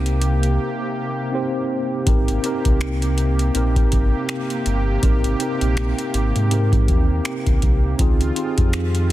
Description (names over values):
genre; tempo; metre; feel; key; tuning
contemporary R&B; 81 BPM; 4/4; swing 58% on 16ths; Ab major; A4 = 442 Hz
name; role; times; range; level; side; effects
mellow tine electric piano; accompaniment; 0.0-9.1 s; C4 to C5; -24 LUFS; equal; medium stereo tremolo
warm analog pad; sustained chords; 0.0-9.1 s; C3 to G4; -27 LUFS; equal; chorus, tremolo, sidechain pumping
sub bass with octave; bass; 0.0-9.1 s; G1 to Ab2; -20 LUFS; equal; none
booming analog drum machine; drums; 0.1-9.1 s; finger snaps, hi-hat, kick drum; -19 LUFS; equal; soft clipping on snare
room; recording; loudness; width
digital ambience; dense, heavily limited modern master; -17 LUFS; side -15 dB against mid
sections
0.0-2.1 A section; 2.1-9.1 B section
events
break 0.6-2.1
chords
0.0 Abmaj9 (rootless); 2.1 Abmaj9; 8.0 Dbmaj9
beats
0.58 1.32 | 2.07 2.81 3.55 4.29 | 5.03 5.77 6.51 7.25 | 7.99 8.73